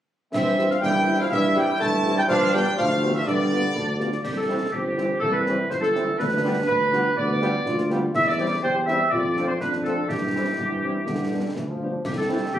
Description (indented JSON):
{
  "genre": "military-style march for wind band",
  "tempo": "123 BPM",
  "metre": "2/4",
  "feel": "straight",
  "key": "C major",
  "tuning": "A4 = 439 Hz",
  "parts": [
    { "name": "clear trumpet section", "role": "melody", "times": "0.3-12.4 s", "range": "E4 to A5", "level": "-30 LUFS", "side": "left 1 dB", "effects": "none" },
    { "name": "clear euphonium", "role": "second line", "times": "0.3-12.6 s", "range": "D3 to G4", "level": "-29 LUFS", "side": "right 1 dB", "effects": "none" },
    { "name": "warm woodwind section", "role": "second line", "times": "0.3-12.6 s", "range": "G4 to A5", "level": "-24 LUFS", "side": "equal", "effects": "none" },
    { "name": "warm trombone section", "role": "sustained chords", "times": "0.3-12.4 s", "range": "D3 to E4", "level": "-30 LUFS", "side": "equal", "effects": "none" },
    { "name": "warm tuba", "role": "bass", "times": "0.3-12.6 s", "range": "G1 to G2", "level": "-26 LUFS", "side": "right 1 dB", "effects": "none" },
    { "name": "concert snare drum, clash cymbals and concert bass drum", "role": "drums", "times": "0.3-12.6 s", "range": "none", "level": "-32 LUFS", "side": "left 1 dB", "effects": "none" },
    { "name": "mellow French horn section", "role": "accompaniment", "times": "0.6-12.4 s", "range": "G3 to G4", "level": "-32 LUFS", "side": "left 4 dB", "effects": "none" }
  ],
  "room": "moderate large studio reverb, RT60 1.2 s",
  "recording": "recorded on a phone in the room, club reverb",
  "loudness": "-20 LUFS",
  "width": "side -11 dB against mid",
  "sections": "0.3-4.2 A section; 4.2-12.6 B section",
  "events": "none",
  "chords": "0.3 C/G; 2.3 G7; 4.2 C; 6.2 G7/D; 8.1 C/E; 9.1 Dm7/F; 10.1 C/G; 11.1 G; 12.1 C"
}